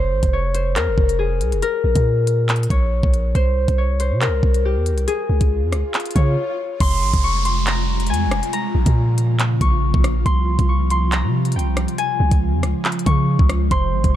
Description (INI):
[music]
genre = hip hop, drill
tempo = 139 BPM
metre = 4/4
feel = half-time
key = F minor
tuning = A4 = 440 Hz
[part]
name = concert harp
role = melody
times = 0.0-14.2 s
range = G4 to Db6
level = -23 LUFS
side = left 3 dB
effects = low-pass filter, ping-pong delay
[part]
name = long sustained 808-style bass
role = bass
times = 0.0-14.2 s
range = F1 to Db3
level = -19 LUFS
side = equal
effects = none
[part]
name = drill drum kit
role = drums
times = 0.2-14.1 s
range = handclaps, hi-hat, kick drum, rim click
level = -20 LUFS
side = equal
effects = none
[part]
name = swell and downlifter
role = sound effects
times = 5.5-10.3 s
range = none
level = -30 LUFS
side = right 2 dB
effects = none
[part]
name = ethereal airy pad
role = sustained chords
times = 7.4-14.2 s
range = C3 to F4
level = -25 LUFS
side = equal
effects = ensemble chorus, built-in reverb
[part]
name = gliding portamento lead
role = second line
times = 13.7-14.1 s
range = C5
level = -27 LUFS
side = right 11 dB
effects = chorus
[sound]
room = digital ambience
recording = none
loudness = -16 LUFS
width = side -12 dB against mid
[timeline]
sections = 0.0-6.8 A section; 6.8-14.2 B section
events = swell 5.5-6.8; break 6.4-6.8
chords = 0.0 Fm; 1.6 Bbm; 3.4 C7(no3); 5.1 Db5; 6.8 Fmadd9; 8.5 Bbm; 10.3 Csus4; 12.0 Db